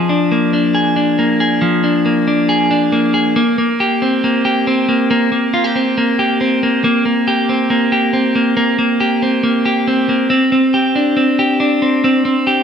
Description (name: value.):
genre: indie pop.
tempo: 138 BPM.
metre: 4/4.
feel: straight.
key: unclear.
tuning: A4 = 440 Hz.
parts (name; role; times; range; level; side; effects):
clean electric guitar; solo; 0.0-12.6 s; F3 to Ab4; -12 LUFS; equal; spring reverb.
room: moderate echo chamber reverb, RT60 1.6 s.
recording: none.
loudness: -12 LUFS.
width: side -7 dB against mid.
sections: 0.0-3.4 A section; 3.4-12.6 B section.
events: none.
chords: 0.0 Bb7; 3.4 Gmadd11/Bb; 10.3 Csus2.